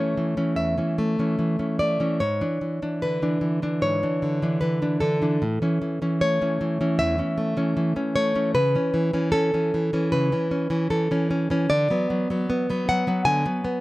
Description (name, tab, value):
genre	romantic piece for solo classical guitar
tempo	76 BPM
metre	4/4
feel	rubato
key	A major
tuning	A4 = 441 Hz
part	nylon-string guitar	solo	0.0-13.8 s	E2 to G#5	-21 LUFS	equal	none
room	little or no reverb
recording	close, detailed microphones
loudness	-21 LUFS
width	side -18 dB against mid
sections	0.0-13.8 A section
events	none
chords	0.0 A; 2.2 E7(no3); 5.4 A; 8.6 A/C#; 11.7 Bm/D